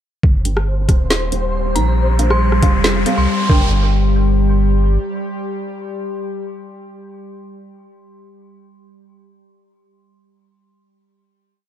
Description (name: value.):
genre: deep dubstep.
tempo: 138 BPM.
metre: 4/4.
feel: half-time.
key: G minor.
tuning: A4 = 442 Hz.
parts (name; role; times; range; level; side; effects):
bowed-like drone; sustained chords; 1.1-6.9 s; G3 to G4; -23 LUFS; left 3 dB; built-in reverb.
saturated sub bass; bass; 0.2-5.0 s; Eb1 to C2; -16 LUFS; equal; none.
electronic kick drum; drums; 0.2-3.6 s; none; -14 LUFS; equal; overdrive.
riser; sound effects; 1.2-3.7 s; none; -26 LUFS; equal; none.
flickering grainy texture; texture; 0.7-3.7 s; C5; -27 LUFS; left 1 dB; built-in reverb.
filtered dub chord stab; stabs; 0.5-6.9 s; C4 to G5; -26 LUFS; right 2 dB; phaser, lush chorus, dub echo.
garage drum kit; drums; 0.5-3.2 s; hi-hat, rim click, snare drum; -20 LUFS; equal; none.
dark detuned synth bell; melody; 1.8-3.6 s; Bb5 to C6; -26 LUFS; equal; chorus, dub echo.
room: light reverb, digital ambience.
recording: dark, warm production.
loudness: -14 LUFS.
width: side -11 dB against mid.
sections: 0.2-3.7 build; 3.7-7.2 final hit.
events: build-up 0.2-3.7; filter sweep on synth stab 0.2-3.7; riser 1.2-3.7.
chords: 0.2 Gm; 1.1 Eb; 2.0 Bb; 2.8 F; 3.5 Gm.